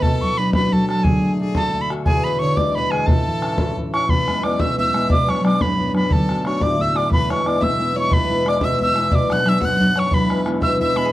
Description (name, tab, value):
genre	celtic folk, Celtic jig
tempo	119 BPM (dotted quarters)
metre	6/8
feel	straight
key	unclear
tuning	A4 = 445 Hz
part	bright wooden whistle	melody	0.0-11.1 s	G#5 to F#6	-21 LUFS	right 1 dB	none
part	clear fiddle	second line	0.0-11.1 s	G#4 to F#5	-27 LUFS	left 5 dB	tape echo
part	concert harp	accompaniment	0.0-11.1 s	E2 to F#4	-20 LUFS	equal	none
part	bodhran	percussion	0.0-11.0 s	none	-22 LUFS	equal	none
room	light reverb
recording	dry, close 1970s-style studio recording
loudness	-16 LUFS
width	side -15 dB against mid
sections	0.0-4.1 A section; 4.1-11.1 B section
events	none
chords	0.0 Bm; 1.0 D; 2.1 E7; 3.1 A; 4.1 E; 5.1 Bm; 6.1 D; 7.1 E; 9.1 Bm; 10.1 E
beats	| 0.03 0.54 | 1.05 1.56 | 2.06 2.57 | 3.08 3.58 | 4.08 4.59 | 5.09 5.60 | 6.10 6.61 | 7.11 7.61 | 8.11 8.61 | 9.12 9.62 | 10.12 10.61 | 11.11